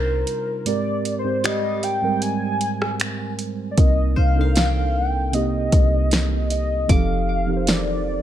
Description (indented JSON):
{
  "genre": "contemporary R&B",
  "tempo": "77 BPM",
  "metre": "4/4",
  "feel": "straight",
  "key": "C minor",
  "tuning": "A4 = 440 Hz",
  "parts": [
    { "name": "warm velvety synth lead", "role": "melody", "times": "0.0-8.2 s", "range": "Bb4 to Ab5", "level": "-25 LUFS", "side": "left 1 dB", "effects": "chorus, tremolo, ping-pong delay" },
    { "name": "muted felt-like synth keys", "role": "accompaniment", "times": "0.0-8.2 s", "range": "Ab2 to C5", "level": "-25 LUFS", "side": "right 3 dB", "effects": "chorus" },
    { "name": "clean 808-style bass", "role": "bass", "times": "0.0-8.2 s", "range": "F1 to C2", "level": "-21 LUFS", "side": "equal", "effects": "none" },
    { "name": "qanun", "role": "texture", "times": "0.0-8.2 s", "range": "G3 to D6", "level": "-34 LUFS", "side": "left 7 dB", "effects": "ping-pong delay" },
    { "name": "smooth R&B drum kit", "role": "drums", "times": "0.3-7.9 s", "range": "finger snaps, hi-hat, kick drum, rim click, snare drum", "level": "-21 LUFS", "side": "equal", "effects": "vintage 12-bit sampler grit" }
  ],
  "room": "little or no reverb",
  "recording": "none",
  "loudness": "-18 LUFS",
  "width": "side -11 dB against mid",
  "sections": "0.0-3.8 A section; 3.8-8.2 B section",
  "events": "kick muted 0.7-3.8",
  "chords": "0.0 Cm9; 0.7 Abmaj9; 3.8 Cm9; 6.9 F7"
}